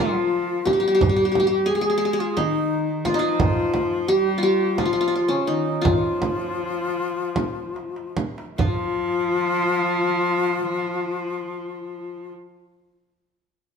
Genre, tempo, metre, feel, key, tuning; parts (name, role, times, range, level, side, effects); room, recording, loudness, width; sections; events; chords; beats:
Turkish makam ensemble; 141-176 BPM (eighths); 7/8; straight; F makam ussak; A4 = 440 Hz
qanun; melody; 0.0-13.0 s; Db4 to Bb4; -22 LUFS; equal
breathy mellow ney; second line; 0.0-12.3 s; Db4 to Ab4; -26 LUFS; left 6 dB
rich cello; second line; 0.0-12.3 s; Db3 to Ab3; -28 LUFS; right 3 dB
darbuka; percussion; 0.7-9.0 s; -30 LUFS; right 2 dB
frame drum; percussion; 0.7-9.0 s; -26 LUFS; right 3 dB
wet large studio reverb, RT60 1.4 s; band playing live in one room; -20 LUFS; side -6 dB against mid
0.0-8.6 A section; 8.6-11.6 B section
slowing down 3.4-8.6; drum fill 7.8-8.6
0.33 0.67 | 1.01 1.35 1.69 2.03 2.37 2.71 3.06 | 3.40 3.74 4.08 4.42 4.77 5.12 5.48 | 5.84 6.21 6.58 6.97 7.36 7.75 8.16 | 8.58 9.01 9.43 9.86 10.28 10.71 11.13